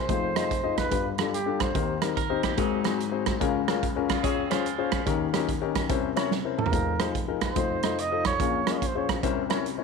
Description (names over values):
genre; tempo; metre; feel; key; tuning
uptempo gospel; 144 BPM; 4/4; swing 66% on 8ths; unclear; A4 = 443 Hz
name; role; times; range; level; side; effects
mellow trumpet; melody; 0.0-2.0, 6.6-9.1 s; G4 to Eb5; -30 LUFS; right 5 dB; none
warm upright piano; accompaniment; 0.0-9.8 s; F1 to Eb5; -27 LUFS; left 10 dB; none
natural country drum kit; drums; 0.1-9.8 s; hi-hat, kick drum, rim click, snare drum, toms; -29 LUFS; right 6 dB; none
clean electric guitar; second line; 2.2-5.0 s; Gb3 to Bb4; -35 LUFS; right 12 dB; spring reverb
room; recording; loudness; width
moderate plate reverb, RT60 1.4 s, small room ambience; 1960s-style stereo with parts hard left and right; -24 LUFS; side -5 dB against mid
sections
0.0-9.8 A section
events
drum fill 6.3-6.7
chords
0.1 Fm7; 0.9 G7; 1.8 Cm7/Eb; 2.6 Ab9; 3.4 Db6; 5.1 Eb7; 5.9 C7b9; 6.7 Fm7; 7.6 F7; 8.4 Bbm7; 9.2 C7b9